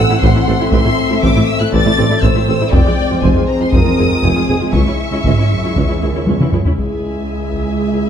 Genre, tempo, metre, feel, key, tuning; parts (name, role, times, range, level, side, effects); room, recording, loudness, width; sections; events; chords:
cinematic, epic orchestral film score; 120 BPM; 4/4; straight; A4 = 440 Hz
rich symphonic violin section; melody; 0.0-8.1 s; G5 to A6; -23 LUFS; left 2 dB
warm symphonic violin section; second line; 0.0-8.1 s; Ab4 to F#5; -22 LUFS; left 3 dB
warm French horn section; sustained chords; 0.0-8.1 s; G#3 to E4; -20 LUFS; left 3 dB
mellow tuba; bass; 0.0-6.6 s; F1 to C#2; -21 LUFS; right 3 dB
rich symphonic double bass section; bass; 0.0-8.1 s; F1 to C#2; -20 LUFS; right 3 dB
warm symphonic cello section; bass; 0.0-8.1 s; C#2 to A2; -20 LUFS; right 2 dB
warm symphonic viola section; accompaniment; 0.1-8.1 s; E3 to A4; -21 LUFS; right 1 dB
taiko ensemble; drums; 0.2-7.8 s; -18 LUFS; left 1 dB
wet scoring stage reverb, RT60 1.7 s; dark, warm production; -12 LUFS; side -8 dB against mid
0.0-6.8 A section; 6.8-8.1 B section
drum fill 6.3-6.8
0.0 Am; 2.7 Fm; 4.7 C#m